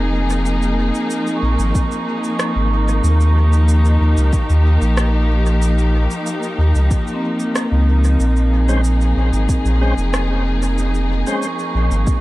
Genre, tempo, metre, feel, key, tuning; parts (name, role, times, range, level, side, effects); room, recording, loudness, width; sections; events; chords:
ambient dub; 93 BPM; 4/4; straight; Bb dorian; A4 = 438 Hz
rich studio string section; sustained chords; 0.0-12.2 s; F3 to Ab4; -21 LUFS; left 1 dB
vibraphone with medium mallets; arpeggios; 0.0-12.2 s; C4 to Db6; -25 LUFS; right 3 dB; tape echo
warm sub bass; bass; 0.0-12.1 s; F1 to Eb2; -15 LUFS; equal
electronic cabasa and rim click; drums; 0.3-12.2 s; -28 LUFS; right 1 dB; overdrive, dub echo
electronic kick drum; drums; 1.7-12.2 s; -18 LUFS; equal; overdrive
overdriven tonewheel organ; stabs; 8.7-11.5 s; Ab3 to C5; -26 LUFS; left 1 dB; fast rotary speaker, dub echo
digital ambience; -14 LUFS; side -18 dB against mid
0.0-12.2 A section
0.0 Bbm9; 3.0 Eb9; 8.2 Bbm9